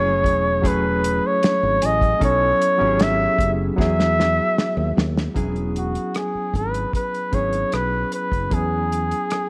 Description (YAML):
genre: lush 1970s-style soul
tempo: 76 BPM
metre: 4/4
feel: straight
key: E major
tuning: A4 = 440 Hz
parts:
  - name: warm flugelhorn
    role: melody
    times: 0.0-9.5 s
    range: F#4 to E5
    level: -23 LUFS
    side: equal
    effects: none
  - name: barky reed electric piano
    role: accompaniment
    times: 0.0-9.5 s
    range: F#3 to A4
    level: -27 LUFS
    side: equal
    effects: overdrive, fast tremolo
  - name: fingered electric bass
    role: bass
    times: 0.0-9.1 s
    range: E1 to E2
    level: -27 LUFS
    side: equal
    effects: none
  - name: celesta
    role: texture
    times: 0.0-2.6 s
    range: G#5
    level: -37 LUFS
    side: equal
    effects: none
  - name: cloth-damped thuddy drum kit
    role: drums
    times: 0.2-9.5 s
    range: hi-hat, kick drum, rim click, snare drum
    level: -26 LUFS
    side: equal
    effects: none
room: moderate echo chamber reverb, RT60 2.2 s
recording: none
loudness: -20 LUFS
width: mono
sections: 0.0-5.4 A section; 5.4-9.5 B section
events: drum fill 3.8-5.4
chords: 0.0 F#m9; 2.2 B9sus4; 3.8 Emaj9; 5.4 E69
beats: 0.64 1.43 | 2.21 3.00 3.79 4.58 | 5.36 6.15 6.94 7.73 | 8.52 9.30